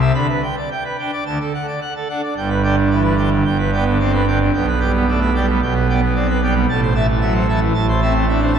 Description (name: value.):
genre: classical, organ toccata.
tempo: 111 BPM.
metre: 4/4.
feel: straight.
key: G major.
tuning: A4 = 440 Hz.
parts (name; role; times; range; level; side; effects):
pipe organ, full organ; solo; 0.0-8.6 s; G1 to B5; -15 LUFS; right 2 dB; none.
room: wet church reverb, RT60 2.9 s.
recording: dark, warm production.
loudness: -15 LUFS.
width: side -8 dB against mid.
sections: 0.0-2.4 A section; 2.4-8.6 B section.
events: none.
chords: 0.1 G/D; 1.3 D; 2.4 G; 4.5 G/B; 6.7 Am.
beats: | 0.14 0.70 1.26 1.81 | 2.36 2.90 3.45 3.99 | 4.53 5.07 5.60 6.14 | 6.68 7.21 7.75 8.28.